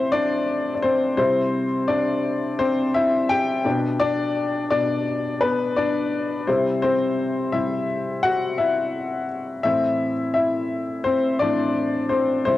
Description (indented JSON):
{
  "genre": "pop",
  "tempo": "85 BPM",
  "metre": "4/4",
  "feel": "straight",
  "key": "unclear",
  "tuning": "A4 = 441 Hz",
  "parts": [
    { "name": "warm upright piano", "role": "solo", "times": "0.0-12.6 s", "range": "A2 to G5", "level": "-20 LUFS", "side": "left 2 dB", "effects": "cassette tape" }
  ],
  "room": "wet spring reverb, RT60 2.6 s",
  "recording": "home recording on cassette",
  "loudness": "-20 LUFS",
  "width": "side -14 dB against mid",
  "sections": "0.0-12.6 A section",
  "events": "upright piano solo 0.0-12.6",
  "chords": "0.0 Am; 1.2 C; 3.7 G/B (rootless); 6.5 C; 9.6 Am",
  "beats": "0.48 | 1.18 1.89 2.59 3.30 | 4.00 4.71 5.42 6.12 | 6.83 7.53 8.24 8.94 | 9.65 10.35 11.06 11.77 | 12.47"
}